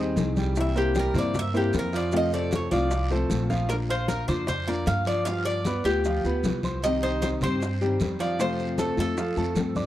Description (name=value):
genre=latin, Cuban son and guajira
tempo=153 BPM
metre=4/4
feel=straight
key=Bb major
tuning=A4 = 440 Hz
part: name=nylon-string guitar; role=accompaniment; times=0.0-9.9 s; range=C3 to Ab4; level=-30 LUFS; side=left 3 dB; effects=none
part: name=clear concert grand piano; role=arpeggios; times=0.0-9.9 s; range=F3 to F6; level=-30 LUFS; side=right 3 dB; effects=none
part: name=upright bass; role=bass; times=0.0-9.9 s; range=Bb1 to G2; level=-29 LUFS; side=right 1 dB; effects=none
part: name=bongos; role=percussion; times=0.2-9.9 s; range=none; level=-36 LUFS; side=left 4 dB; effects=none
part: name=congas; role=percussion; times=0.2-9.9 s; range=none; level=-31 LUFS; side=left 2 dB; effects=none
part: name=guiro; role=percussion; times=0.2-9.9 s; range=none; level=-43 LUFS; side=right 4 dB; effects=none
part: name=maracas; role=percussion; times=0.2-9.9 s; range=none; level=-45 LUFS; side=right 6 dB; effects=none
part: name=Cuban tres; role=melody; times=0.6-9.7 s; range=G4 to F5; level=-29 LUFS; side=left 1 dB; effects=none
room=light reverb, studio ambience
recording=dry, close 1970s-style studio recording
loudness=-23 LUFS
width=side -13 dB against mid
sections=0.0-3.7 A section; 3.7-9.9 B section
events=Cuban tres solo 0.0-3.7; drum fill 3.1-3.7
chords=0.0 Abmaj7; 0.6 C7; 2.1 F; 3.7 Bb; 5.3 G7; 6.8 Cm; 8.4 F